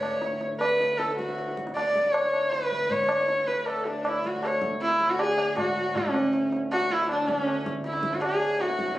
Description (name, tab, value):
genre	indian classical, Hindustani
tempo	157 BPM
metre	4/4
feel	straight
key	D raga yaman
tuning	A4 = 440 Hz
part	warm sarangi	melody	0.0-9.0 s	C#4-20c to D5	-24 LUFS	equal	none
part	pedal harmonium	drone	0.0-9.0 s	D2 to A2	-35 LUFS	equal	none
part	tabla	percussion	0.0-9.0 s	none	-32 LUFS	equal	none
room	light reverb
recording	recorded on a phone in the room, club reverb, vinyl crackle, lossy compression artefacts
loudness	-23 LUFS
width	side -15 dB against mid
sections	0.0-6.0 A section; 6.0-9.0 B section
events	none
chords	none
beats	0.21 0.60 0.98 | 1.37 1.75 2.13 2.52 | 2.90 3.28 3.67 4.05 | 4.43 4.81 5.19 5.57 | 5.95 6.33 6.71 7.09 | 7.47 7.84 8.22 8.60 | 8.98